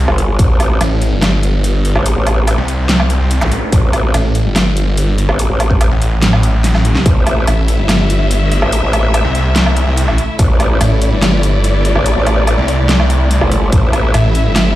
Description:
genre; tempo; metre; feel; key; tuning
heavy wobble dubstep; 144 BPM; 4/4; half-time; A minor; A4 = 440 Hz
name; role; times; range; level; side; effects
snarling distorted saw bass; bass; 0.0-14.8 s; G1 to C2; -12 LUFS; equal; distortion, overdrive
growl bass; bass; 0.1-14.1 s; G1 to A1; -13 LUFS; equal; chorus, overdrive
dubstep drum kit; drums; 0.1-14.6 s; hi-hat, snare drum, woodblock; -18 LUFS; equal; studio reverb
electronic kick drum; drums; 0.4-0.5, 3.7-7.1, 10.4-10.5, 13.7-13.8 s; none; -12 LUFS; equal; studio reverb
zap; sound effects; 3.4-3.5 s; none; -22 LUFS; equal; none
warm studio string section; sustained chords; 7.1-14.8 s; A3 to E5; -19 LUFS; left 1 dB; sidechain pumping
room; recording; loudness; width
light reverb; played on a big sound system in a bare room, large studio reverb; -10 LUFS; side -15 dB against mid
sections
0.0-14.8 A section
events
drum fill 6.6-7.1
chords
0.0 A5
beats
| 0.39 0.81 1.22 1.64 | 2.06 2.47 2.89 3.31 | 3.72 4.14 4.56 4.97 | 5.39 5.81 6.22 6.64 | 7.06 7.47 7.89 8.31 | 8.72 9.14 9.56 9.97 | 10.39 10.81 11.22 11.64 | 12.06 12.47 12.89 13.31 | 13.72 14.14 14.56

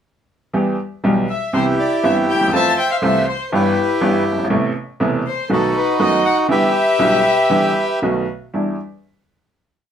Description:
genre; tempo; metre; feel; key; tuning
tango; 120 BPM; 4/4; rubato; E minor; A4 = 440 Hz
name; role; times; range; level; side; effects
bright upright piano; accompaniment; 0.5-8.8 s; E1 to G4; -18 LUFS; right 1 dB; none
bandoneon; melody; 1.3-8.0 s; D#4 to A5; -17 LUFS; right 1 dB; none
warm violin; second line; 1.3-8.0 s; A4 to A5; -21 LUFS; left 5 dB; none
room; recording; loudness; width
moderate studio ambience, RT60 0.5 s; band playing live in one room; -15 LUFS; side -8 dB against mid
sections
0.5-8.5 A section; 8.5-9.9 final chord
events
none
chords
0.5 Em; 1.5 Cmaj7; 2.5 Fmaj7; 3.5 Em/G; 4.5 Amadd9; 5.5 B7; 6.5 Em7; 8.0 B7; 8.5 Em7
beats
| 0.54 1.04 1.54 2.04 | 2.54 3.03 3.52 4.02 | 4.51 5.00 5.50 6.00 | 6.50 7.00 7.51 8.03 | 8.54

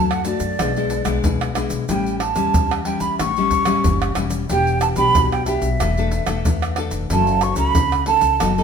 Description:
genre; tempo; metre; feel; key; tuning
samba and choro; 92 BPM; 4/4; straight; unclear; A4 = 441 Hz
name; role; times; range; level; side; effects
breathy concert flute; melody; 0.0-8.6 s; D5 to C#6; -20 LUFS; right 4 dB; none
nylon-string guitar; accompaniment; 0.0-8.6 s; A2 to A4; -22 LUFS; left 4 dB; none
upright bass; bass; 0.0-8.6 s; E1 to F#2; -24 LUFS; left 1 dB; none
tube shaker, pandeiro, tamborim and surdo; percussion; 0.1-8.6 s; none; -23 LUFS; equal; none
room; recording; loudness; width
moderate stone room reverb, RT60 1.1 s; band playing live in one room; -17 LUFS; side -6 dB against mid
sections
0.0-8.6 A section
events
none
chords
0.0 Bm7 (rootless); 0.6 E7/B; 1.9 A7; 4.5 Em7; 5.8 Asus4/E; 7.1 F#m7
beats
0.59 1.24 | 1.89 2.54 3.20 3.85 | 4.50 5.15 5.80 6.45 | 7.11 7.76 8.41

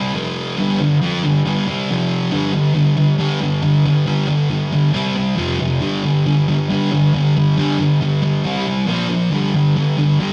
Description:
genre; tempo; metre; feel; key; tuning
rock; 137 BPM; 4/4; straight; unclear; A4 = 440 Hz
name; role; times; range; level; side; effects
thick fuzz guitar; solo; 0.0-10.3 s; F2 to F4; -17 LUFS; equal; distortion, analog delay
room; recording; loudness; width
moderate stone room reverb, RT60 1.0 s; rough rehearsal-room recording, tube saturation, nothing above 10.3 kHz; -17 LUFS; mono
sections
0.0-2.3 A section; 2.3-10.3 B section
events
none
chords
0.1 F5; 0.6 G5; 1.9 F5; 2.3 G5; 4.9 C5; 5.4 F5; 5.8 G5; 8.4 C5; 8.9 Bb5; 9.3 G5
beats
0.15 | 0.58 1.02 1.45 1.89 | 2.32 2.76 3.19 3.63 | 4.07 4.50 4.94 5.38 | 5.82 6.25 6.69 7.13 | 7.57 8.00 8.44 8.88 | 9.32 9.76 10.19

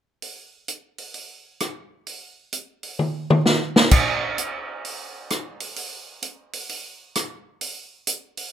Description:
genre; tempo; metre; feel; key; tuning
jazz; 130 BPM; 4/4; swing 65% on 8ths; none; none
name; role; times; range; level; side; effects
swinging big-band drum kit; drums; 0.2-8.4 s; crash cymbal, hi-hat, kick drum, rim click, snare drum, toms; -21 LUFS; equal; none
room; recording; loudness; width
moderate club reverb, RT60 0.8 s; minimal, uncompressed stereo recording; -22 LUFS; side -10 dB against mid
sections
0.2-3.9 A section; 3.9-8.5 B section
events
drum fill 3.0-3.9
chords
none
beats
| 0.21 0.68 1.14 1.60 | 2.07 2.53 2.99 3.45 | 3.92 4.38 4.84 5.30 | 5.76 6.23 6.69 7.15 | 7.61 8.07

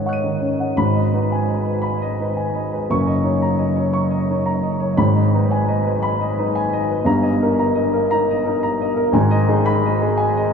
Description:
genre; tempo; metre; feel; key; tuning
neoclassical minimalist piano; 58 BPM (dotted quarters); 6/8; rubato; G# minor; A4 = 440 Hz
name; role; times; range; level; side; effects
dark grand piano; solo; 0.0-10.5 s; F#1 to D#7; -16 LUFS; equal; none
room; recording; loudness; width
wet huge ambient reverb, RT60 8.2 s; in a vast, echoing space; -16 LUFS; side -6 dB against mid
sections
0.8-10.5 A section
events
none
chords
0.0 D#m7/G#; 0.8 G#m; 2.9 F#6; 5.0 G#m; 7.1 D#/G; 9.1 G#m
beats
| 0.78 1.84 | 2.90 3.95 | 4.99 6.04 | 7.08 8.12 | 9.15 10.18

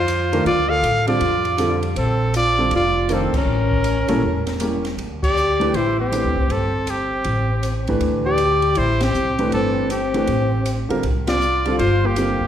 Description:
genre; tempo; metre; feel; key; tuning
modal jazz; 159 BPM; 4/4; swing 65% on 8ths; Bb major; A4 = 442 Hz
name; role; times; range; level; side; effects
bright trumpet; melody; 0.0-12.5 s; G4 to F5; -22 LUFS; right 1 dB; none
mellow alto saxophone; second line; 0.0-12.5 s; Bb3 to A4; -23 LUFS; left 2 dB; none
upright bass; bass; 0.0-12.4 s; E1 to F2; -23 LUFS; equal; none
open jazz drum kit; drums; 0.1-12.3 s; crash cymbal, hi-hat, kick drum, ride cymbal, snare drum; -30 LUFS; equal; none
warm grand piano; accompaniment; 0.3-12.4 s; D3 to B4; -24 LUFS; right 1 dB; none
room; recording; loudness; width
wet concert hall reverb, RT60 1.9 s; recorded in a church or concert hall; -17 LUFS; side -10 dB against mid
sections
0.0-5.0 A section; 5.0-12.5 B section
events
band accent 3.3, 5.2, 9.0, 11.2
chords
0.0 Bbmaj9; 3.5 A7b9; 5.0 D9sus4; 11.0 C9sus4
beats
0.08 | 0.46 0.83 1.21 1.59 | 1.96 2.34 2.72 3.09 | 3.47 3.85 4.23 4.60 | 4.98 5.36 5.74 6.12 | 6.49 6.87 7.25 7.63 | 8.01 8.38 8.76 9.14 | 9.52 9.90 10.28 10.66 | 11.03 11.41 11.79 12.17

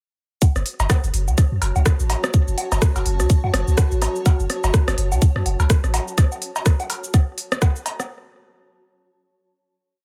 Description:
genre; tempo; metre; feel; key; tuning
minimal techno; 125 BPM; 4/4; swing 58% on 16ths; F# minor; A4 = 440 Hz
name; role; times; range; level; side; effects
electronic kick drum; drums; 0.4-7.7 s; none; -18 LUFS; equal; none
minimal click drum kit; drums; 0.4-8.1 s; cabasa, hi-hat, rim click; -29 LUFS; equal; none
electronic woodblock, rim click and cowbell; percussion; 0.4-8.1 s; none; -29 LUFS; equal; none
granular cloud pad; texture; 1.2-6.2 s; F#4 to A5; -33 LUFS; equal; built-in reverb, sidechain pumping
punchy sub bass; bass; 0.6-6.0 s; F#1 to F#2; -22 LUFS; equal; sidechain pumping
room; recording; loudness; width
little or no reverb; none; -20 LUFS; mono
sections
0.4-8.1 drop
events
drop 0.4-8.1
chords
0.4 F#m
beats
| 0.42 0.90 1.38 1.86 | 2.34 2.82 3.30 3.78 | 4.26 4.74 5.22 5.70 | 6.18 6.66 7.14 7.62

